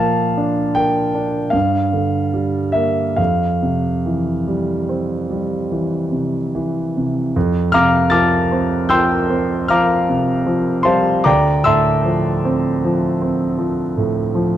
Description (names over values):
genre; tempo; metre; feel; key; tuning
classical, impressionist solo piano; 69-80 BPM; 5/4; rubato; F major; A4 = 439 Hz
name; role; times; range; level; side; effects
warm grand piano; solo; 0.0-14.6 s; D2 to A6; -15 LUFS; equal; none
room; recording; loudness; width
moderate recital hall reverb, RT60 1.6 s; close, detailed microphones; -15 LUFS; side -11 dB against mid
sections
0.0-7.4 A section; 7.4-14.6 A section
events
none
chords
0.0 Bbmaj7; 1.5 Gm7; 3.2 Fsus2; 7.4 Fadd9; 11.3 Dm9